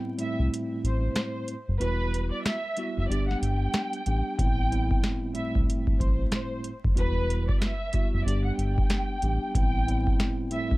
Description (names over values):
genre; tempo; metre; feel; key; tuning
hip hop, boom-bap hip-hop; 93 BPM; 4/4; swing 62% on 16ths; A dorian; A4 = 440 Hz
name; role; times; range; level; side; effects
mellow tine electric piano; accompaniment; 0.0-10.8 s; A2 to G4; -32 LUFS; equal; medium stereo tremolo, cassette tape, high-pass filter, low-pass filter, plate reverb
warm studio violin section; melody; 0.2-10.7 s; B4 to G5; -33 LUFS; equal; high-pass filter, low-pass filter, plate reverb, tape echo
booming analog drum machine; drums; 0.2-10.8 s; hi-hat, kick drum, snare drum; -27 LUFS; equal; none
round analog bass; bass; 0.4-10.8 s; E1 to C2; -27 LUFS; equal; none
room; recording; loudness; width
light reverb; vinyl crackle; -24 LUFS; side -20 dB against mid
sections
0.0-10.8 A section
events
break 0.0-4.4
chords
0.0 Am7; 1.8 Emadd9; 3.1 G; 4.4 Am7; 7.0 Emadd9; 8.3 G; 9.5 Am7